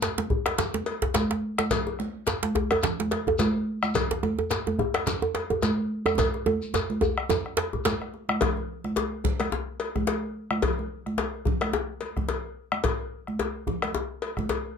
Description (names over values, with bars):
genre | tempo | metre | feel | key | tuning
west african traditional, West African drum ensemble | 108 BPM | 4/4 | swing 56% on 16ths | none | none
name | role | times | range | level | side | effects
cowbell | percussion | 0.0-14.6 s | none | -31 LUFS | left 4 dB | none
djembe | percussion | 0.0-14.6 s | none | -30 LUFS | left 5 dB | none
djembe | percussion | 0.0-8.0 s | none | -27 LUFS | right 5 dB | none
shekere | percussion | 0.0-8.0 s | none | -35 LUFS | left 2 dB | none
congas | percussion | 0.2-14.5 s | none | -31 LUFS | right 2 dB | none
bombo | percussion | 0.3-14.5 s | none | -30 LUFS | equal | none
room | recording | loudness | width
moderate small room reverb, RT60 0.5 s | none | -25 LUFS | side -6 dB against mid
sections
0.0-8.4 A section; 8.4-14.8 B section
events
drum fill 6.2-8.4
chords
none